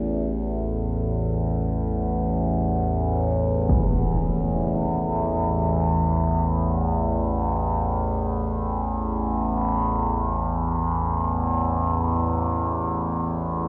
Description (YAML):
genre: dark ambient drone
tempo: free time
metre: none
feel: none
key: unclear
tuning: A4 = 441 Hz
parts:
  - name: overtone-sweeping drone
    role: drone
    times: 0.0-13.7 s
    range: A1 to E2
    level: -24 LUFS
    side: equal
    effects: chorus, built-in reverb, phaser
  - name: impact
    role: percussion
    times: 3.7-3.9 s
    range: none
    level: -29 LUFS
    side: equal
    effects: low-pass filter on sfx
room: wet cathedral reverb, RT60 5.9 s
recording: dark, warm production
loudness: -24 LUFS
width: mono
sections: 0.0-13.7 A section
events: none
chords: 0.0 A5